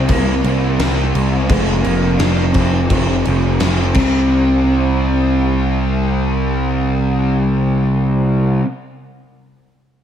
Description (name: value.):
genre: rock, shoegaze and dream pop.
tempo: 85 BPM.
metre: 4/4.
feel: straight.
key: unclear.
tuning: A4 = 445 Hz.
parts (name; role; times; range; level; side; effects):
electric guitar through a small old amp; melody; 0.0-8.6 s; Ab3 to D4; -22 LUFS; left 1 dB; diffuse ambient delay.
fuzz guitar; riff; 0.0-8.6 s; F2 to C4; -17 LUFS; right 1 dB; distortion, ensemble chorus.
fuzz picked electric bass; bass; 0.0-8.6 s; F1 to C2; -18 LUFS; equal; overdrive.
gated 80s drum kit; drums; 0.1-4.1 s; crash cymbal, kick drum, snare drum; -20 LUFS; equal; none.
room: moderate plate reverb, RT60 2.0 s, small room ambience.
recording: dreamy mix soaked in reverb.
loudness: -13 LUFS.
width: side -9 dB against mid.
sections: 0.0-4.3 A section; 4.3-7.1 B section.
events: none.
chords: 0.0 C5; 1.5 F5; 4.0 C5.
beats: 0.10 0.80 | 1.51 2.21 2.91 3.62 | 4.32 5.02 5.73 6.43.